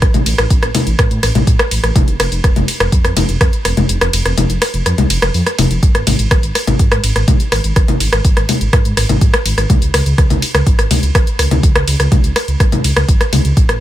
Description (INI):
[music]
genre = melodic techno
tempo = 124 BPM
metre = 4/4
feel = straight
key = unclear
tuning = A4 = 440 Hz
[part]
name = swelling detuned saw bass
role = bass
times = 0.0-13.8 s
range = F1 to A2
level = -16 LUFS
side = equal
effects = tube saturation, sidechain pumping
[part]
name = deep house drum kit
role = drums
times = 0.0-13.8 s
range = congas, hi-hat, ride cymbal, rim click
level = -15 LUFS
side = left 1 dB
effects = overdrive, sidechain pumping on hats, sidechain pumping on perc, sidechain pumping on cymbals
[part]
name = electronic kick drum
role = drums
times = 0.0-13.7 s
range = none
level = -12 LUFS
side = equal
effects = overdrive
[sound]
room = little or no reverb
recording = none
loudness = -11 LUFS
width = side -13 dB against mid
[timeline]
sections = 0.0-13.8 A section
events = kick drops out 3.9-5.8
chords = none